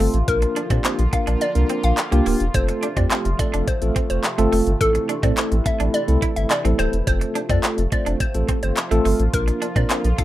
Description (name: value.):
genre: dance-pop.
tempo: 106 BPM.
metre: 4/4.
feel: straight.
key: F major.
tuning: A4 = 440 Hz.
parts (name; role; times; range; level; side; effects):
tine electric piano; accompaniment; 0.0-10.2 s; A3 to C5; -24 LUFS; equal; medium stereo tremolo, sidechain pumping, plate reverb.
sweeping resonant pad; sustained chords; 0.0-10.2 s; C3 to F4; -31 LUFS; equal; chorus, phaser, sidechain pumping, plate reverb.
electric guitar at the edge of break-up; riff; 0.0-10.2 s; A3 to E4; -28 LUFS; right 7 dB; wide subtle chorus.
saturated sub bass; bass; 0.0-10.1 s; D1 to Bb2; -20 LUFS; equal; sidechain pumping.
pop drum kit; drums; 0.0-10.2 s; handclaps, hi-hat, kick drum; -23 LUFS; equal; none.
hollow square pluck; melody; 0.3-10.2 s; A4 to F5; -26 LUFS; equal; chorus, sidechain pumping, plate reverb, digital delay.
group handclap; percussion; 0.8-10.0 s; none; -34 LUFS; left 2 dB; none.
room: moderate small room reverb, RT60 0.5 s.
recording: rough home demo mix.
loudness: -18 LUFS.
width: side -14 dB against mid.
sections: 0.0-10.2 A section.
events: none.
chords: 0.3 Bb; 2.5 F; 4.8 Am; 7.1 F; 9.3 Bb.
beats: | 0.28 0.85 1.41 1.98 | 2.54 3.11 3.68 4.24 | 4.81 5.37 5.94 6.51 | 7.07 7.64 8.20 8.77 | 9.34 9.90.